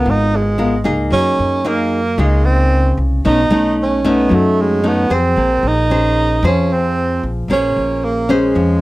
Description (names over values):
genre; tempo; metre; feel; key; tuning
bossa nova; 113 BPM; 4/4; straight; Bb minor; A4 = 436 Hz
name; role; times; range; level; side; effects
mellow tenor saxophone; melody; 0.0-8.8 s; Ab3 to Eb4; -17 LUFS; right 2 dB; slapback echo
nylon-string guitar; accompaniment; 0.0-8.8 s; Ab2 to C5; -17 LUFS; left 1 dB; none
upright bass; bass; 0.1-8.8 s; Ab1 to Gb2; -18 LUFS; equal; none
room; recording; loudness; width
light reverb; dry, close 1970s-style studio recording; -13 LUFS; side -18 dB against mid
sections
0.0-8.8 A section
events
none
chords
0.0 Db13; 1.1 Gb69; 3.2 B9; 5.4 Bbm9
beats
0.06 0.59 | 1.12 1.65 2.18 2.71 | 3.24 3.77 4.31 4.84 | 5.37 5.90 6.43 6.96 | 7.49 8.02 8.55